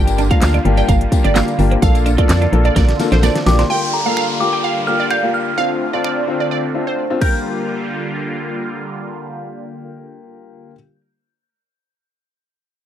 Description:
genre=dance-pop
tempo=128 BPM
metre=4/4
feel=straight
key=G minor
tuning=A4 = 440 Hz
part: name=glassy wavetable pluck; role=melody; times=0.0-8.8 s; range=Bb4 to G5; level=-22 LUFS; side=right 6 dB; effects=chorus, sidechain pumping, tape echo
part: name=clear baby grand piano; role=accompaniment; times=0.0-10.7 s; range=Bb3 to Bb4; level=-22 LUFS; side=left 9 dB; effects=sidechain pumping
part: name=filtered supersaw swell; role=sustained chords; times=0.0-10.7 s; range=D3 to A4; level=-25 LUFS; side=right 1 dB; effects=phaser, sidechain pumping
part: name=organ-like FM bass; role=bass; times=0.0-3.6 s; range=G1 to F2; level=-15 LUFS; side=equal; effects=sidechain pumping
part: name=twelve-string electric guitar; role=riff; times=0.1-3.7 s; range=Bb3 to F4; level=-22 LUFS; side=right 6 dB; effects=analog chorus
part: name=pop drum kit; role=drums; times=0.1-7.3 s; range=crash cymbal, finger snaps, handclaps, hi-hat, kick drum, snare drum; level=-17 LUFS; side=equal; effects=none
part: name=tambourine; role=percussion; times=0.1-3.7 s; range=none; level=-34 LUFS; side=left 22 dB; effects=none
part: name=glassy synth bell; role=melody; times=3.5-10.7 s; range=Bb5 to G6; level=-23 LUFS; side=equal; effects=chorus, tape echo
part: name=downlifter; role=sound effects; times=3.7-7.4 s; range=none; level=-26 LUFS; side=equal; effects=none
room=little or no reverb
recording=dry, close 1970s-style studio recording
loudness=-14 LUFS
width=side -10 dB against mid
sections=0.0-3.7 A section; 3.7-7.4 B section; 7.4-11.2 C section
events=drop 0.0-3.7; drum fill 2.8-3.7; silent gap 6.5-7.4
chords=0.0 Gm7; 1.8 Bbmaj7; 3.7 Gm7; 5.6 Dm7; 7.2 Gm7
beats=0.42 0.89 1.36 | 1.82 2.29 2.76 3.23 | 3.70 4.17 4.64 5.11 | 5.57 6.04 6.51 6.98 | 7.45 7.92 8.39 8.86 | 9.32 9.79 10.26 10.73

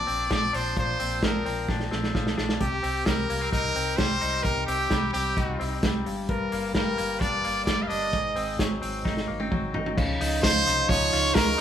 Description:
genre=jangly indie pop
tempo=130 BPM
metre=4/4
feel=straight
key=unclear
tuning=A4 = 440 Hz
part: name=brilliant trumpet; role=melody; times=0.0-11.6 s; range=G4 to F5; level=-26 LUFS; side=equal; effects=digital delay
part: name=direct-recorded clean electric guitar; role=arpeggios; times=0.0-11.6 s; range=G2 to F4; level=-31 LUFS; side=left 3 dB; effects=harmonic tremolo
part: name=vintage muted fingered electric bass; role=bass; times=0.0-11.5 s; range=G1 to Db2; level=-33 LUFS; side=equal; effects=none
part: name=vintage drum kit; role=drums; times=0.1-11.6 s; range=crash cymbal, hi-hat, kick drum, snare drum, toms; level=-28 LUFS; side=right 1 dB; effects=none
part: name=hollow soft pad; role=sustained chords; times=10.0-11.6 s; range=Db3 to Eb4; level=-33 LUFS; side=right 3 dB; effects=chorus
part: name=glockenspiel with rubber mallets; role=second line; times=10.4-11.6 s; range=Bb5 to Db6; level=-34 LUFS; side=right 2 dB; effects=none
room=moderate studio reverb, RT60 0.7 s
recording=band playing live in one room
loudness=-23 LUFS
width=side -9 dB against mid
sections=0.0-10.0 A section; 10.0-11.6 B section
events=drum fill 1.7-2.6, 9.1-10.0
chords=0.0 Bbadd9; 2.6 Cm; 6.1 Gm; 8.1 Ab7; 10.0 Dbadd9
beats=0.31 | 0.77 1.23 1.69 2.15 | 2.60 3.06 3.52 3.98 | 4.45 4.91 5.37 5.83 | 6.29 6.75 7.21 7.67 | 8.13 8.59 9.05 9.52 | 9.98 10.44 10.90 11.36

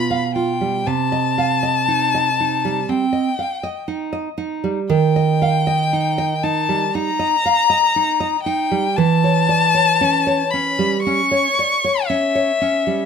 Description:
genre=romantic duo for violin and classical guitar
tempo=59 BPM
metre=4/4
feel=rubato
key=unclear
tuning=A4 = 440 Hz
part: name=rich violin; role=melody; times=0.0-13.1 s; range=E5 to C#6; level=-18 LUFS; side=left 5 dB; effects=none
part: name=nylon-string guitar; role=accompaniment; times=0.0-13.1 s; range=B2 to F5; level=-19 LUFS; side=right 4 dB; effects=none
room=moderate studio reverb, RT60 0.7 s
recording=minimal, uncompressed stereo recording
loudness=-16 LUFS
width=side -6 dB against mid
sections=0.0-13.1 A section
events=none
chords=0.0 G7/B; 0.9 Cm; 4.9 Eb; 9.0 A7/E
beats=| 0.87 1.89 2.89 3.88 | 4.89 5.91 6.93 7.95 | 8.96 10.00 11.04 12.08

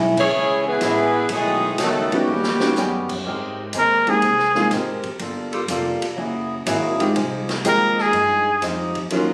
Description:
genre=jazz, big band swing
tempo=123 BPM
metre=4/4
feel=swing 68% on 8ths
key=Ab major from 3.3 s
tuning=A4 = 440 Hz
part: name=fingerpicked swing-style acoustic guitar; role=accompaniment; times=0.0-9.3 s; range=A2 to Bb4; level=-28 LUFS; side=equal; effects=none
part: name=upright bass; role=bass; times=0.0-9.3 s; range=F1 to Ab2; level=-32 LUFS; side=equal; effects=none
part: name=bright saxophone section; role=melody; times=0.2-3.1 s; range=C#3 to C#5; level=-25 LUFS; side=equal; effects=none
part: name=bright trombone section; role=second line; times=0.2-3.1 s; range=A2 to G#4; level=-24 LUFS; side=equal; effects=none
part: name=swinging big-band drum kit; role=drums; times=0.2-9.3 s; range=crash cymbal, hi-hat, kick drum, ride cymbal, snare drum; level=-32 LUFS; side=equal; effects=none
part: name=warm baby grand piano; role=accompaniment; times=2.1-9.3 s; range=Gb3 to G5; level=-25 LUFS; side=equal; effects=none
part: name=mellow saxophone section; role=sustained chords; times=3.3-9.3 s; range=Eb3 to Bb4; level=-32 LUFS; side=equal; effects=none
part: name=bright trumpet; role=melody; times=3.8-4.7, 7.7-8.6 s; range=Ab4 to Bb4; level=-19 LUFS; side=equal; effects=none
room=moderate large studio reverb, RT60 1.0 s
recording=recorded on a phone in the room, studio reverb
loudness=-20 LUFS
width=mono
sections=0.0-3.3 A section; 3.3-9.3 B section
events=band accent 0.1; drum fill 2.3-2.8; trumpet solo 3.3-9.3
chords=0.0 Amaj7; 1.3 B7; 2.3 D#7alt; 3.3 Abmaj9; 5.2 Gm9; 6.2 Gb9; 7.2 Fm9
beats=0.33 0.81 | 1.30 1.79 2.28 2.77 | 3.25 3.74 4.23 4.72 | 5.21 5.70 6.18 6.67 | 7.16 7.65 8.14 8.63 | 9.12

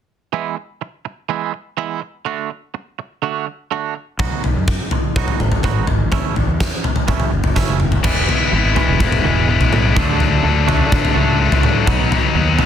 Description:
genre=quiet-loud alternative rock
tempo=125 BPM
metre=4/4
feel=straight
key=E mixolydian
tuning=A4 = 440 Hz
part: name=twangy electric guitar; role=arpeggios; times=0.3-12.7 s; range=E2 to F#4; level=-23 LUFS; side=right 12 dB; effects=harmonic tremolo
part: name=fuzz fingered electric bass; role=bass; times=4.2-12.6 s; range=E1 to D3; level=-20 LUFS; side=equal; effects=overdrive
part: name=big rock drum kit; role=drums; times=4.2-12.7 s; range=crash cymbal, kick drum, snare drum, toms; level=-17 LUFS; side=equal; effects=soft clipping on kick
part: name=tight distorted guitar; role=riff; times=8.0-12.7 s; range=B2 to E4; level=-17 LUFS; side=left 7 dB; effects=distortion
room=little or no reverb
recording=dense, heavily limited modern master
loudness=-15 LUFS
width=side -9 dB against mid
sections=0.3-8.1 A section; 8.1-12.7 B section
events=drum fill 7.6-8.1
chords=0.3 E; 2.3 D; 4.2 B; 6.1 A; 8.1 E; 10.0 D; 11.9 B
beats=| 0.32 0.81 1.29 1.78 | 2.26 2.75 3.23 3.71 | 4.20 4.68 5.16 5.64 | 6.13 6.61 7.09 7.57 | 8.05 8.53 9.01 9.49 | 9.97 10.45 10.93 11.40 | 11.88 12.36

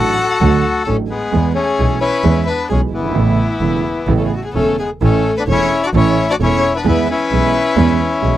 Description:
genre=tango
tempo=131 BPM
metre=4/4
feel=rubato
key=A major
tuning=A4 = 440 Hz
part: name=bandoneon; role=melody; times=0.0-8.4 s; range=E3 to A4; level=-18 LUFS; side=left 4 dB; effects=none
part: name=warm violin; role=second line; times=0.0-8.4 s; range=E4 to F#5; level=-21 LUFS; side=left 3 dB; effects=none
part: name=warm grand piano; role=accompaniment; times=0.0-8.4 s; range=E1 to A4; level=-19 LUFS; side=right 6 dB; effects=none
part: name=warm double bass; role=bass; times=0.0-8.4 s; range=E1 to E2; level=-18 LUFS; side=equal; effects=none
room=little or no reverb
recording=dry, close 1970s-style studio recording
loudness=-13 LUFS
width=side -13 dB against mid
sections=0.0-5.0 A section; 5.0-8.4 B section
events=none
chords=0.0 D; 1.3 E; 3.2 Aadd9; 5.0 A; 6.9 E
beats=0.41 0.87 | 1.33 1.78 2.24 2.69 | 3.15 3.61 4.08 4.54 | 5.02 5.48 5.95 6.41 | 6.86 7.32 7.78 8.24

